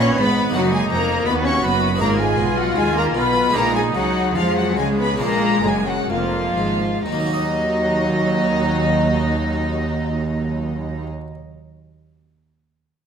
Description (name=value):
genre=classical, baroque-style concerto movement with solo episodes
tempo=62-85 BPM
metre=4/4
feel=straight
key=Eb minor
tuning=A4 = 440 Hz
part: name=rich cello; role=melody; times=0.0-11.1 s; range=F3 to Eb4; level=-24 LUFS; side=left 1 dB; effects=none
part: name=warm chamber violin section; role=melody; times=0.0-11.1 s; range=Eb5 to Db6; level=-25 LUFS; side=left 2 dB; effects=none
part: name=dark chamber violin section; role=second line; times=0.0-11.0 s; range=Eb4 to Db5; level=-25 LUFS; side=left 1 dB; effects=none
part: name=harpsichord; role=accompaniment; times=0.0-11.3 s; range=Eb2 to Eb5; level=-28 LUFS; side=equal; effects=none
part: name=warm studio viola section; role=accompaniment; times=0.0-11.1 s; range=Gb3 to Gb4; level=-24 LUFS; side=equal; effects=none
part: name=rich chamber double bass section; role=bass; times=0.0-11.1 s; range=F1 to F2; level=-26 LUFS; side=right 4 dB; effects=none
part: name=warm chamber cello section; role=bass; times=0.0-11.1 s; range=Eb2 to F3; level=-26 LUFS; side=right 2 dB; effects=none
room=wet recital hall reverb, RT60 1.4 s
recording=minimal, uncompressed stereo recording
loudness=-17 LUFS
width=side -7 dB against mid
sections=0.0-7.1 A section; 7.1-10.9 B section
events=slowing down 0.0-7.1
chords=0.0 Fdim (rootless); 0.5 Ebm; 2.0 Abm; 3.5 Bb7sus4; 5.2 Bb7; 7.1 Ebm